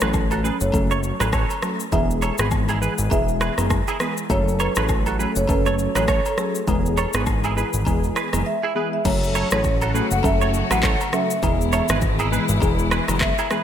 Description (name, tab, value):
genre	afrobeats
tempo	101 BPM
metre	4/4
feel	swing 58% on 16ths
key	F# minor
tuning	A4 = 440 Hz
part	marimba with medium mallets	melody	0.0-13.6 s	G#4 to F#5	-27 LUFS	right 1 dB	none
part	warm analog keys	accompaniment	0.0-13.6 s	E3 to A4	-25 LUFS	left 1 dB	chorus
part	direct-recorded clean electric guitar	riff	0.0-13.6 s	E4 to C#5	-28 LUFS	right 6 dB	ensemble chorus
part	fat analog bass	bass	0.0-13.3 s	E1 to A1	-23 LUFS	equal	none
part	afro-pop drum kit	drums	0.0-13.6 s	crash cymbal, handclaps, kick drum, rim click, shaker	-24 LUFS	equal	gated reverb
part	woodblock and agogo bells	percussion	0.1-13.5 s	none	-32 LUFS	left 2 dB	none
part	warm studio string section	sustained chords	9.1-13.6 s	B2 to F#4	-29 LUFS	left 3 dB	none
room	light reverb, digital ambience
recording	bright 1980s-style digital production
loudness	-18 LUFS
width	side -9 dB against mid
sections	0.0-9.1 A section; 9.1-13.6 B section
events	none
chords	0.0 F#m; 1.9 E; 4.3 F#m; 6.7 E; 9.1 F#m; 11.4 E